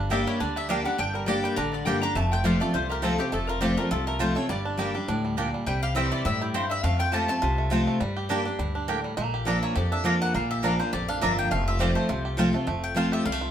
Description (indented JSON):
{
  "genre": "bluegrass",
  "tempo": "205 BPM",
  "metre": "4/4",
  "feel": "swing 55% on 8ths",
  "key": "unclear",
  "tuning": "A4 = 439 Hz",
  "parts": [
    { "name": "bluegrass banjo", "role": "melody", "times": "0.0-13.5 s", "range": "D3 to G4", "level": "-32 LUFS", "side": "right 3 dB", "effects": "none" },
    { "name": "picked steel-string acoustic guitar", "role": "accompaniment", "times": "0.0-13.5 s", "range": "F2 to G4", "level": "-27 LUFS", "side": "left 1 dB", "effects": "none" },
    { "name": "upright bass", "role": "bass", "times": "0.0-13.5 s", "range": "F1 to G2", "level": "-31 LUFS", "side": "equal", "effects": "none" },
    { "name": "mandolin", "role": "melody", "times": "0.1-13.5 s", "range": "G4 to Bb5", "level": "-32 LUFS", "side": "left 2 dB", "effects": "none" },
    { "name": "lap resonator guitar", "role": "second line", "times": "0.1-8.0 s", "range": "G4 to Bb5", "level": "-34 LUFS", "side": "left 3 dB", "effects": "none" },
    { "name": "mandolin", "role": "stabs", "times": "0.1-13.1 s", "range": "Bb3 to Bb5", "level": "-31 LUFS", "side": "right 3 dB", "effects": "none" }
  ],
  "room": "wet studio reverb, RT60 0.8 s",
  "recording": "band playing live in one room",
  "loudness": "-23 LUFS",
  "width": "side -9 dB against mid",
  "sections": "0.0-9.2 A section; 9.2-13.5 B section",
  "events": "none",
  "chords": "0.0 Gm; 2.2 F; 4.5 Gm; 5.7 C; 6.8 F; 8.0 Gm; 9.2 Bb; 11.5 F"
}